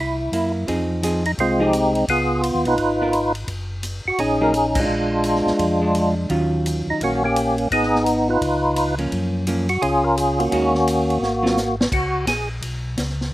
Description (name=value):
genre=soul jazz organ trio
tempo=171 BPM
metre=4/4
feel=swing 62% on 8ths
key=Db mixolydian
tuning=A4 = 440 Hz
part: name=percussive tonewheel organ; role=melody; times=0.0-12.5 s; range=Ab3 to Cb5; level=-18 LUFS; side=equal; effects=slow rotary speaker, chorus vibrato
part: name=mellow tonewheel organ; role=bass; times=0.0-13.3 s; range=Gb1 to Gb2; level=-26 LUFS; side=equal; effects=chorus vibrato, slow rotary speaker
part: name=hollow-body jazz guitar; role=accompaniment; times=0.3-11.6 s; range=Eb3 to Bb4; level=-24 LUFS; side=right 2 dB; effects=none
part: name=vintage drum kit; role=drums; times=0.3-13.3 s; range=crash cymbal, hi-hat, kick drum, ride cymbal, snare drum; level=-29 LUFS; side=equal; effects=none
room=little or no reverb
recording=recorded outdoors, with no room sound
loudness=-18 LUFS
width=side -16 dB against mid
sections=0.7-11.9 A section; 11.9-13.3 B section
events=band accent 4.7; drum fill 11.2-11.9; tonewheel organ solo 11.9-13.3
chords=0.0 C7; 0.7 Fm7; 2.1 Db9; 3.5 Gb69; 4.9 Bb7; 6.3 Ebm9; 7.7 Abm; 8.4 Db9; 9.1 Gbmaj7; 10.5 Ebm7; 11.2 Ab13; 11.9 Db7sus4